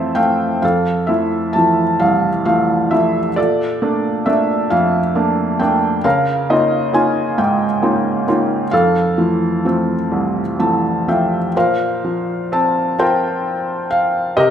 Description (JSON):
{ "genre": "classical, lyrical solo piano", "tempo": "44 BPM (dotted quarters)", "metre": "6/8", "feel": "uneven beats, rubato", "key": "F major", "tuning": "A4 = 440 Hz", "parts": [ { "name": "felt-muted upright piano", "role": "solo", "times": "0.0-14.5 s", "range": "C2 to A5", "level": "-14 LUFS", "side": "equal", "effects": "none" } ], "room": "moderate scoring stage reverb, RT60 1.9 s", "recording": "recorded in a church or concert hall", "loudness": "-14 LUFS", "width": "side -9 dB against mid", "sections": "0.6-11.6 A section; 11.6-14.5 B section", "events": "felt piano fill 0.0-0.6, 10.1-11.6", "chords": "0.0 Fmaj7; 3.4 Bbmaj7; 6.1 Db69; 8.7 Fmaj7; 11.6 Bbsus2" }